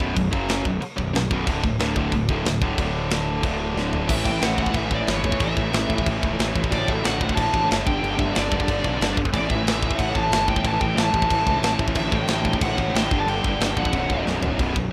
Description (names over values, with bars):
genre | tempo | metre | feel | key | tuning
heavy metal | 183 BPM | 4/4 | straight | unclear | A4 = 439 Hz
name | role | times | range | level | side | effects
high-gain distorted guitar | riff | 0.0-14.9 s | B1 to F#3 | -27 LUFS | equal | distortion
fuzz picked electric bass | bass | 0.0-14.9 s | B0 to C#2 | -30 LUFS | equal | overdrive
tight metal drum kit | drums | 0.0-14.8 s | crash cymbal, kick drum, snare drum, toms | -28 LUFS | equal | none
high-gain lead guitar | melody | 4.1-14.2 s | C#5 to A5 | -28 LUFS | equal | distortion, tape echo
room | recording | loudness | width
light reverb | rough home demo mix | -22 LUFS | mono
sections
0.0-4.1 A section; 4.1-14.6 B section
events
drum fill 3.8-4.1, 14.3-14.6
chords
0.3 F#5; 0.7 B5; 1.5 D5; 4.1 A5; 6.7 D/A; 7.9 G5; 9.3 A5; 12.0 D/A; 13.1 G5; 13.9 Bm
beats
| 0.16 0.49 0.82 1.15 | 1.47 1.80 2.13 2.46 | 2.79 3.11 3.44 3.77 | 4.10 4.42 4.75 5.08 | 5.41 5.73 6.06 6.39 | 6.72 7.04 7.37 7.70 | 8.03 8.36 8.68 9.01 | 9.34 9.67 9.99 10.32 | 10.65 10.98 11.31 11.64 | 11.96 12.29 12.62 12.95 | 13.28 13.61 13.94 14.27 | 14.60